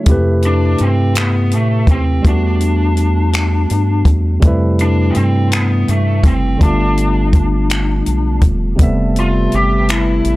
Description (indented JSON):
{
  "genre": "slow six-eight R&B",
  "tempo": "55 BPM (dotted quarters)",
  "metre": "6/8",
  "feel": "straight",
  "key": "unclear",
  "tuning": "A4 = 443 Hz",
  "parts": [
    { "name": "barky tine electric piano", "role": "accompaniment", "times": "0.0-10.4 s", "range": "C3 to E5", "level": "-18 LUFS", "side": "right 1 dB", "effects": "none" },
    { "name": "warm analog pad", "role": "sustained chords", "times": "0.0, 8.8-10.4 s", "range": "G3 to A5", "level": "-30 LUFS", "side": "left 2 dB", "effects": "chorus" },
    { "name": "rubbery square bass", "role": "bass", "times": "0.1-10.4 s", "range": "E1 to A2", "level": "-16 LUFS", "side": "equal", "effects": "none" },
    { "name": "compact cocktail drum kit", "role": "drums", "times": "0.1-10.4 s", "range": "finger snaps, hi-hat, kick drum", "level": "-14 LUFS", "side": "equal", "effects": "none" },
    { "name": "lead guitar through a small cranked amp", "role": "melody", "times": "0.5-10.4 s", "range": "A3 to G4", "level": "-20 LUFS", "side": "left 2 dB", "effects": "overdrive" }
  ],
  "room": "little or no reverb",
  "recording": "dry, gritty hardware recording",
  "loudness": "-12 LUFS",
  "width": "side -18 dB against mid",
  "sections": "0.1-10.4 A section",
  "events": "none",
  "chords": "0.1 Fmaj9#11; 2.2 Em11; 4.4 Fmaj9#11; 6.6 G7; 8.8 Fmaj9#11",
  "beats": "| 0.07 1.16 | 2.25 3.34 | 4.43 5.52 | 6.61 7.70 | 8.79 9.88"
}